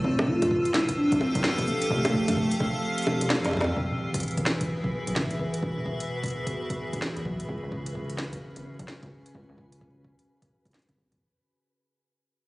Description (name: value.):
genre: IDM.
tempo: 129 BPM.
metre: 4/4.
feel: swing 62% on 16ths.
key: E major.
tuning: A4 = 440 Hz.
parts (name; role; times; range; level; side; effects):
warbly nostalgic lead; melody; 0.0-3.3 s; A3 to F4; -27 LUFS; equal; chorus, tremolo, ping-pong delay.
icy glass pad; sustained chords; 0.0-11.2 s; C#3 to G#5; -31 LUFS; equal; chorus, built-in reverb.
rubbery square bass; bass; 0.0-11.2 s; E1 to F#2; -32 LUFS; equal; tube saturation.
electronic kick drum; drums; 0.0-11.2 s; none; -33 LUFS; equal; none.
flickering grainy texture; texture; 0.0-11.2 s; B4 to E6; -40 LUFS; left 1 dB; built-in reverb.
organic electronic drum kit; drums; 0.2-11.2 s; bongos, hi-hat, shaker, snare drum, toms; -29 LUFS; equal; none.
room: moderate lush hall reverb, RT60 2.4 s.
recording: recorded on a phone in the room, club reverb, nothing above 10.4 kHz.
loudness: -25 LUFS.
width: side -21 dB against mid.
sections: 0.0-3.8 A section; 3.8-11.2 B section.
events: kick drops out 2.8-3.8; drum fill 3.3-3.8; fade-out 3.8-11.2; filter sweep on ambient pad 3.8-11.2.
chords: 0.0 Fadd9; 3.8 Eadd9; 7.5 C#sus4.